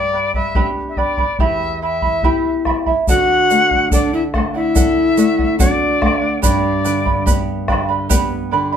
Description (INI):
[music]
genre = andean folk, Andean ensemble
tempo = 72 BPM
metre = 4/4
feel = straight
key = unclear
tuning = A4 = 438 Hz
[part]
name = bright reedy quena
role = melody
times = 0.0-7.2 s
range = D5 to F#5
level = -19 LUFS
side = left 4 dB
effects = none
[part]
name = charango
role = accompaniment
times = 0.0-8.8 s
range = E4 to B5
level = -21 LUFS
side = right 5 dB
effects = none
[part]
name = nylon-string guitar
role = accompaniment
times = 0.0-8.8 s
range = E2 to A4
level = -22 LUFS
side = left 2 dB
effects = none
[part]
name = bombo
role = percussion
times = 0.3-8.3 s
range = none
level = -19 LUFS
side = equal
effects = none
[part]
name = breathy large pan pipes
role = second line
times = 3.1-7.2 s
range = D4 to F#4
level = -18 LUFS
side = right 2 dB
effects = none
[part]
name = egg shaker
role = percussion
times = 3.1-8.3 s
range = none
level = -25 LUFS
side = right 6 dB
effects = none
[sound]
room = moderate studio reverb, RT60 0.6 s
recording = band playing live in one room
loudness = -14 LUFS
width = side -8 dB against mid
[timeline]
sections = 0.0-3.1 A section; 3.1-8.8 B section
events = none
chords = 0.0 G; 1.4 Em; 3.1 D; 6.4 G